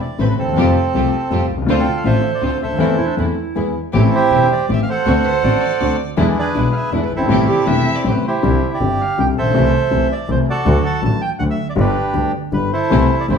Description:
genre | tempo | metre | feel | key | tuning
tango | 160 BPM | 3/4 | rubato | A minor, C major from 8.4 s | A4 = 440 Hz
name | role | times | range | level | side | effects
bandoneon | melody | 0.0-13.4 s | C4 to A5 | -19 LUFS | right 3 dB | none
warm concert grand piano | accompaniment | 0.2-13.4 s | E1 to A4 | -18 LUFS | left 4 dB | none
warm studio string section | stabs | 0.2-8.2, 12.9-13.4 s | G#3 to B4 | -25 LUFS | right 2 dB | none
rich double bass | bass | 0.2-13.4 s | E1 to F2 | -20 LUFS | equal | none
warm clarinet | second line | 3.0-8.4 s | C4 to D5 | -23 LUFS | right 5 dB | none
warm violin | second line | 5.2-8.4 s | C5 to E5 | -28 LUFS | equal | none
room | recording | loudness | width
wet large studio reverb, RT60 0.8 s | band playing live in one room | -14 LUFS | side -6 dB against mid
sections
0.0-8.4 A section; 8.4-13.4 B section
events
none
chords
0.0 Amadd9; 0.6 Fadd9; 1.7 Dm7; 2.8 Am/E; 3.6 E; 3.9 Am7; 5.1 D7; 6.2 E7; 7.3 Am7; 8.4 Cadd9; 9.6 Am/C; 10.7 D; 11.8 G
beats
0.20 | 0.57 0.95 1.32 | 1.69 2.06 2.43 | 2.81 3.18 3.56 | 3.94 4.32 4.69 | 5.07 5.44 5.81 | 6.18 6.55 6.92 | 7.30 7.68 8.06 | 8.44 8.81 9.18 | 9.55 9.93 10.29 | 10.66 11.04 11.41 | 11.78 12.16 12.54 | 12.92 13.30

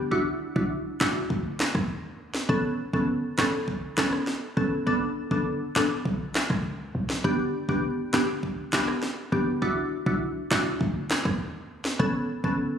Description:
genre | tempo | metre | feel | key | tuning
dancehall | 101 BPM | 4/4 | straight | unclear | A4 = 440 Hz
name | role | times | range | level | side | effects
short 808-style bass | bass | 0.0-12.8 s | F#1 to E2 | -32 LUFS | equal | none
glassy wavetable pluck | accompaniment | 0.1-12.6 s | B3 to A4 | -26 LUFS | equal | chorus, sidechain pumping
island pop drum kit | drums | 0.1-12.6 s | handclaps, kick drum, rim click, snare drum | -29 LUFS | equal | none
room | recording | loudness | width
moderate lush hall reverb, RT60 2.2 s | recorded on a phone in the room, club reverb, compression | -24 LUFS | side -8 dB against mid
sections
0.0-12.8 A section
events
none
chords
0.1 Dadd9; 2.5 Aadd9; 4.9 Bm7; 7.2 G; 9.6 Dadd9; 12.0 Aadd9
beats
| 0.12 0.71 1.30 1.90 | 2.49 3.09 3.68 4.27 | 4.87 5.46 6.06 6.65 | 7.25 7.84 8.43 9.03 | 9.62 10.21 10.81 11.40 | 12.00 12.59

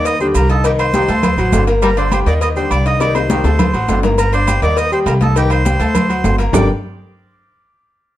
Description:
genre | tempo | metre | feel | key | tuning
latin, salsa | 204 BPM | 4/4 | straight | G harmonic minor | A4 = 438 Hz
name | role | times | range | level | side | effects
melodica | melody | 0.0-6.7 s | G4 to Eb6 | -20 LUFS | right 1 dB | plate reverb
bright grand piano | accompaniment | 0.0-6.7 s | Eb3 to Eb6 | -18 LUFS | left 1 dB | none
upright bass | bass | 0.0-6.7 s | G1 to Eb2 | -16 LUFS | equal | none
agogo bells and timbales | percussion | 0.1-6.6 s | none | -25 LUFS | right 4 dB | none
congas | percussion | 0.1-6.6 s | none | -21 LUFS | equal | none
cowbell and bongos | percussion | 0.1-6.6 s | none | -23 LUFS | left 6 dB | none
maracas | percussion | 0.1-6.6 s | none | -33 LUFS | right 7 dB | none
bright trombone section | second line | 0.2-4.0 s | D3 to G3 | -23 LUFS | left 2 dB | none
room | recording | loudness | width
moderate studio reverb, RT60 0.8 s | dark, warm production | -12 LUFS | side -13 dB against mid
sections
0.0-4.2 A section; 4.2-6.5 B section; 6.5-7.7 C section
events
drum fill 3.0-4.2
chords
0.1 Eb; 0.6 Cmadd9; 1.2 D7; 1.8 Gm; 2.4 Eb; 3.0 Cmadd9; 3.6 D7; 4.2 Gm; 4.8 Eb; 5.4 Cmadd9; 6.0 D7; 6.5 G5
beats
0.05 0.35 | 0.64 0.94 1.23 1.53 | 1.82 2.12 2.41 2.71 | 3.00 3.30 3.59 3.89 | 4.18 4.48 4.77 5.07 | 5.36 5.66 5.95 6.25 | 6.54

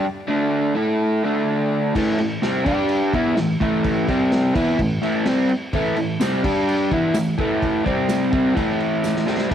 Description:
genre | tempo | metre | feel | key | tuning
garage rock duo or trio | 127 BPM | 4/4 | straight | unclear | A4 = 436 Hz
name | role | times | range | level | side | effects
crunchy overdriven guitar | riff | 0.0-9.5 s | A2 to A4 | -18 LUFS | equal | cassette tape
vintage drum kit | drums | 2.0-9.5 s | crash cymbal, kick drum, snare drum | -26 LUFS | equal | none
tambourine | percussion | 6.2-9.2 s | none | -41 LUFS | right 8 dB | none
room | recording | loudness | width
light reverb | home recording on cassette | -18 LUFS | side -9 dB against mid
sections
0.0-2.0 A section; 2.0-9.5 B section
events
break 0.1-2.0; drum fill 9.1-9.5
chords
0.0 D5; 0.8 A5; 1.2 D5; 2.0 A5; 2.7 G5; 3.1 A5; 4.1 C5; 4.6 A5; 6.4 G5; 6.9 A5; 7.9 C5; 8.3 A5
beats
| 0.06 0.53 1.00 1.48 | 1.95 2.42 2.90 3.37 | 3.84 4.32 4.79 5.26 | 5.74 6.21 6.68 7.16 | 7.63 8.11 8.58 9.05 | 9.53

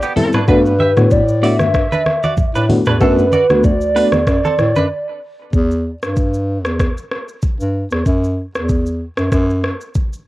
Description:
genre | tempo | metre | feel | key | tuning
afrobeats | 95 BPM | 4/4 | swing 55% on 16ths | E minor | A4 = 440 Hz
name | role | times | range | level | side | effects
hollow clarinet-like synth lead | melody | 0.0-5.2 s | B4 to E5 | -17 LUFS | right 1 dB | chorus, phaser, cassette tape
direct-recorded clean electric guitar | riff | 0.0-4.9 s | B3 to E5 | -23 LUFS | right 4 dB | lush chorus, cassette tape, analog delay
afro-pop drum kit | drums | 0.0-10.3 s | hi-hat, kick drum, rim click, shaker, toms | -18 LUFS | equal | cassette tape
FM electric piano with tremolo | accompaniment | 0.2-4.2 s | G3 to F#4 | -17 LUFS | left 3 dB | cassette tape
congas | percussion | 0.2-4.9 s | none | -21 LUFS | right 1 dB | none
dark bass clarinet | bass | 0.5-9.7 s | D2 to A2 | -17 LUFS | equal | none
room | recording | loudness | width
digital ambience | home recording on cassette | -13 LUFS | side -17 dB against mid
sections
0.0-5.5 A section; 5.5-10.3 B section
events
break 4.9-5.5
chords
0.5 Gmaj7; 3.0 Bm7; 5.5 Em; 8.1 Esus2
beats
| 0.48 1.11 1.74 2.38 | 3.01 3.64 4.27 4.90 | 5.53 6.16 6.80 7.43 | 8.06 8.69 9.32 9.95

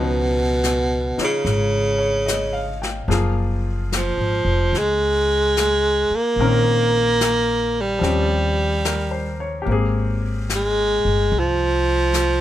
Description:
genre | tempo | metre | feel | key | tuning
jazz ballad | 73 BPM | 4/4 | swing 68% on 8ths | unclear | A4 = 440 Hz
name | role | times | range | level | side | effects
bright baritone saxophone | melody | 0.0-12.4 s | Cb3 to Bb3 | -19 LUFS | right 1 dB | none
bright upright piano | accompaniment | 0.0-12.4 s | Eb3 to G5 | -27 LUFS | left 4 dB | none
upright bass | bass | 0.0-12.4 s | F1 to Eb2 | -23 LUFS | equal | none
jazz brush drum kit | drums | 0.6-12.4 s | brushed snare drum, hi-hat, snare drum | -28 LUFS | left 4 dB | none
room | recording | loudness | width
little or no reverb | none | -17 LUFS | side -12 dB against mid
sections
0.0-12.4 A section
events
none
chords
0.0 Db9; 3.1 Gbmaj9; 6.4 Bbmadd9; 8.0 Eb13; 9.7 Abmaj9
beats
0.63 1.45 2.27 | 3.09 3.91 4.73 5.55 | 6.37 7.19 8.02 8.84 | 9.66 10.49 11.31 12.13

